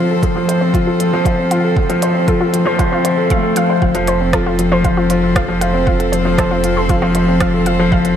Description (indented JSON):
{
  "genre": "piano and strings electronica",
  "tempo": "117 BPM",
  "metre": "4/4",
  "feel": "straight",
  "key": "unclear",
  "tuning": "A4 = 440 Hz",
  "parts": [
    { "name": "rich string quartet", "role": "sustained chords", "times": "0.0-8.2 s", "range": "F3 to C5", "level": "-21 LUFS", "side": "right 1 dB", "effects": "sidechain pumping" },
    { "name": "wide unison pluck", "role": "arpeggios", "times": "0.0-8.0 s", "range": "F4 to F5", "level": "-22 LUFS", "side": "equal", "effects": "sidechain pumping, digital delay" },
    { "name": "dark upright piano", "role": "riff", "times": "0.0-8.2 s", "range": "F3 to C5", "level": "-15 LUFS", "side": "left 2 dB", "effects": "digital delay" },
    { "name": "electronic kick drum", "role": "drums", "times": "0.2-8.0 s", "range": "none", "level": "-18 LUFS", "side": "right 1 dB", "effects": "none" },
    { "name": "minimal click drum kit", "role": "drums", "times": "0.2-8.2 s", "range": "hi-hat, rim click", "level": "-23 LUFS", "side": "right 2 dB", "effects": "none" },
    { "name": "round analog bass", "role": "bass", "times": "3.8-8.2 s", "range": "F1", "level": "-22 LUFS", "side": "right 1 dB", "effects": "sidechain pumping" }
  ],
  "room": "wet echo chamber reverb, RT60 2.5 s",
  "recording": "none",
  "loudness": "-12 LUFS",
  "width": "side -9 dB against mid",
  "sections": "0.0-3.8 A section; 3.8-8.2 B section",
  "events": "build-up 0.0-3.8; filter sweep on synth arpeggio sound 0.0-3.8; drop 3.8-8.2",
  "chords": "0.0 F"
}